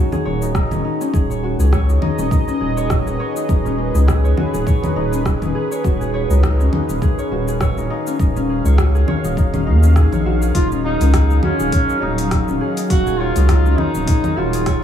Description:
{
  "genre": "organic downtempo",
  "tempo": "102 BPM",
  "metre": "4/4",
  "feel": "swing 56% on 16ths",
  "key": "unclear",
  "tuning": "A4 = 440 Hz",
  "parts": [
    { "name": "warm analog pad", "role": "sustained chords", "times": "0.0-14.8 s", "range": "Eb3 to F5", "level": "-25 LUFS", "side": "right 2 dB", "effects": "chorus, sidechain pumping" },
    { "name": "Celtic harp", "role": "arpeggios", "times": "0.0-14.8 s", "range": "Db4 to Db5", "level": "-22 LUFS", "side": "left 3 dB", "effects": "tape echo" },
    { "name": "afro-pop drum kit", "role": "drums", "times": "0.1-14.8 s", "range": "cabasa, congas, hi-hat, rim click", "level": "-25 LUFS", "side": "equal", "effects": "none" },
    { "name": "round analog bass", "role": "bass", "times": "0.3-14.8 s", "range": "Eb1 to Eb2", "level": "-17 LUFS", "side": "equal", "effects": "sidechain pumping" },
    { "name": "electronic kick drum", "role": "drums", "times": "0.5-14.8 s", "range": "none", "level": "-18 LUFS", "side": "equal", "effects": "none" },
    { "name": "warm duduk", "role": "melody", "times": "10.5-14.8 s", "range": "Db4 to Gb4", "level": "-21 LUFS", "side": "right 1 dB", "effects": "digital delay" }
  ],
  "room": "light reverb",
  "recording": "small room ambience",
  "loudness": "-15 LUFS",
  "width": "side -9 dB against mid",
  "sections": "0.0-14.8 A section",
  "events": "none",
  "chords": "0.0 Ebm7; 1.1 Abm/Eb; 10.5 Ebm7",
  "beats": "0.55 | 1.14 1.73 2.31 2.90 | 3.49 4.08 4.67 5.25 | 5.84 6.43 7.02 7.61 | 8.20 8.78 9.37 9.96 | 10.55 11.14 11.73 12.31 | 12.90 13.49 14.08 14.67"
}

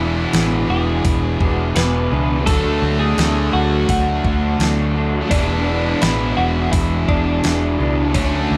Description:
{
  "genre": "rock, shoegaze and dream pop",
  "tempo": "84 BPM",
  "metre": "4/4",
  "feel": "straight",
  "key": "E mixolydian",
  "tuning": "A4 = 440 Hz",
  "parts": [
    { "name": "twelve-string electric guitar", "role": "melody", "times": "0.0-8.6 s", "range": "C#4 to B4", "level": "-26 LUFS", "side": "equal", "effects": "analog delay" },
    { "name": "fingerpicked twelve-string acoustic guitar", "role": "arpeggios", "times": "0.0-8.6 s", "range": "E3 to D4", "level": "-30 LUFS", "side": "equal", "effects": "none" },
    { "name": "crunchy overdriven guitar", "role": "riff", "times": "0.0-8.6 s", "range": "D3 to G#4", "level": "-26 LUFS", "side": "equal", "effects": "lush chorus" },
    { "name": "crunchy overdriven guitar", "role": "riff", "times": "0.0-8.6 s", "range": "E2 to F#4", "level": "-27 LUFS", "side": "equal", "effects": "reverse reverb" },
    { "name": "distorted electric guitar", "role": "riff", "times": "0.0-8.6 s", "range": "E2 to D4", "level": "-27 LUFS", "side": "equal", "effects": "overdrive" },
    { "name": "vintage muted fingered electric bass", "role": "bass", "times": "0.0-8.6 s", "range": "E1 to D2", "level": "-24 LUFS", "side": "equal", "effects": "none" },
    { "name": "detuned 8-bit digital drum machine", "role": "drums", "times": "0.3-8.3 s", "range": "hi-hat, kick drum, snare drum", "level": "-22 LUFS", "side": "equal", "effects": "none" }
  ],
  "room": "light reverb, digital ambience",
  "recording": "none",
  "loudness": "-18 LUFS",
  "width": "mono",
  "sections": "0.0-8.6 A section",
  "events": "none",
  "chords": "0.0 E7; 2.5 D; 5.3 E7",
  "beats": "0.34 1.05 1.76 | 2.47 3.18 3.89 4.60 | 5.31 6.02 6.73 7.44 | 8.15"
}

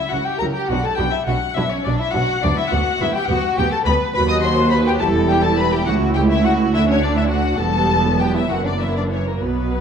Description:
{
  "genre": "quick classical-period movement for string orchestra",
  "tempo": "69 BPM (dotted quarters)",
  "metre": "6/8",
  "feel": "rubato",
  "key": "B minor",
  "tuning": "A4 = 440 Hz",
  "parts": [
    { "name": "muted chamber violin section", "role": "melody", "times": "0.0-9.8 s", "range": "A#4 to D#6", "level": "-22 LUFS", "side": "left 6 dB", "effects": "none" },
    { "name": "muted chamber violin section", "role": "second line", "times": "0.0-9.8 s", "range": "A#3 to D#5", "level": "-23 LUFS", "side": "left 1 dB", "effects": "none" },
    { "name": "muted studio viola section", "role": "accompaniment", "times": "0.1-9.8 s", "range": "E3 to F#4", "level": "-22 LUFS", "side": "right 4 dB", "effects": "none" },
    { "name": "muted chamber cello section", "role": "bass", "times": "0.1-9.8 s", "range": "C#2 to C#3", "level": "-24 LUFS", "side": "right 1 dB", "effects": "none" },
    { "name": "muted chamber double bass section", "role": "bass", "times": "0.1-9.8 s", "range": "E1 to D#2", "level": "-23 LUFS", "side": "right 1 dB", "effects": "none" }
  ],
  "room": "wet scoring stage reverb, RT60 1.5 s",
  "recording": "dark, warm production",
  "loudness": "-16 LUFS",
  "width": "side -7 dB against mid",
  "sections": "0.0-9.8 A section",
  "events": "none",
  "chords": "0.0 F#5/C#; 0.7 Bm; 2.4 Bm/D; 4.1 D#m6; 5.0 Em; 5.9 A/C#; 6.7 D5; 7.6 Em; 8.5 F#7",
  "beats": "| 0.70 1.57 | 2.43 3.29 | 4.14 5.01 | 5.87 6.74 | 7.61 8.51 | 9.42"
}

